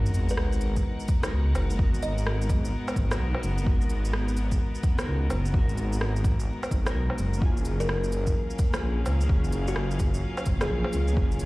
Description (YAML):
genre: future garage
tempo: 128 BPM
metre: 4/4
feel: swing 64% on 16ths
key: G# dorian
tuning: A4 = 440 Hz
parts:
  - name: mellow electric guitar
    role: accompaniment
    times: 0.0-11.5 s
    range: A#3 to A#4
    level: -35 LUFS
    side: left 2 dB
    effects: ensemble chorus, sidechain pumping, tape echo
  - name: warm chamber string section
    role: sustained chords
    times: 0.0-11.5 s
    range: F#3 to F#5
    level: -36 LUFS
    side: equal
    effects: sidechain pumping
  - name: swelling detuned saw bass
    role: bass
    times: 0.0-11.5 s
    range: F#1 to C#2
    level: -27 LUFS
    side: equal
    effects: sidechain pumping
  - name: sub drop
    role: sound effects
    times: 0.0-1.8 s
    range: none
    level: -31 LUFS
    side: equal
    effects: none
  - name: electronic shaker, cabasa, rim click and woodblock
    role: drums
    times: 0.1-11.5 s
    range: none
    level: -35 LUFS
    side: right 1 dB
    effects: overdrive, small room ambience
  - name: kalimba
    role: melody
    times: 0.3-2.5, 7.8-11.3 s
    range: F#4 to D#5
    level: -35 LUFS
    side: equal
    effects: tape echo
  - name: electronic kick drum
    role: drums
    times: 0.8-11.3 s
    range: none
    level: -26 LUFS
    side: equal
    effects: overdrive, small room ambience
room: little or no reverb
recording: played on a big sound system in a bare room, large studio reverb, vinyl crackle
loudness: -24 LUFS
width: side -20 dB against mid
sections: 0.0-11.5 A section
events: impact 0.0-1.8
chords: 0.0 G#m7; 7.4 F#maj7